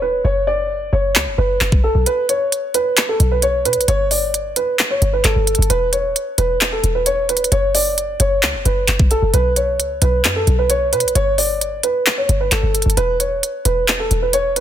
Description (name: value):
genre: hip hop, trap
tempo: 132 BPM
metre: 4/4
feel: half-time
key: B minor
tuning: A4 = 441 Hz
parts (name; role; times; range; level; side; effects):
- dark grand piano; melody; 0.0-14.6 s; A4 to D5; -18 LUFS; equal; ping-pong delay
- short 808-style bass; bass; 0.0-14.6 s; E1 to B2; -19 LUFS; equal; none
- trap drum kit; drums; 1.2-14.6 s; handclaps, hi-hat, kick drum; -17 LUFS; equal; none
room: light reverb, digital ambience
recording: dense, heavily limited modern master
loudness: -14 LUFS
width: side -10 dB against mid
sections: 0.0-14.6 A section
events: break 0.0-2.1, 2.1-3.0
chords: 0.2 F#5; 2.1 Bsus2; 3.9 Gsus2; 5.7 Aadd9/E (rootless); 7.5 F#5; 9.3 B5; 11.2 Gsus2; 13.0 Aadd9/E (rootless)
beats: | 0.24 0.70 1.15 1.61 | 2.06 2.52 2.97 3.43 | 3.88 4.34 4.79 5.25 | 5.70 6.15 6.61 7.06 | 7.52 7.97 8.43 8.88 | 9.34 9.79 10.24 10.70 | 11.15 11.61 12.06 12.52 | 12.97 13.43 13.88 14.34